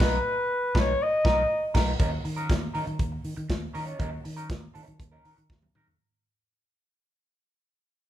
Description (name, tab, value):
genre	disco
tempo	120 BPM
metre	4/4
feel	straight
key	Eb minor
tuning	A4 = 440 Hz
part	warm flugelhorn	melody	0.0-1.8 s	B4 to D#5	-25 LUFS	left 1 dB	none
part	clean electric guitar	accompaniment	0.0-5.9 s	F#3 to Db5	-34 LUFS	right 1 dB	wah
part	fingered electric bass	bass	0.0-5.9 s	B1 to Eb3	-32 LUFS	equal	none
part	modern studio drum kit	drums	0.0-6.0 s	crash cymbal, hi-hat, kick drum, snare drum, toms	-27 LUFS	equal	none
room	light reverb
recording	band playing live in one room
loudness	-24 LUFS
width	side -12 dB against mid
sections	0.0-2.0 A section; 2.0-6.0 B section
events	band accent 0.0-2.0; fade-out 2.0-6.0; drum fill 5.5-6.0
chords	0.0 Bmaj7; 2.0 Ebm7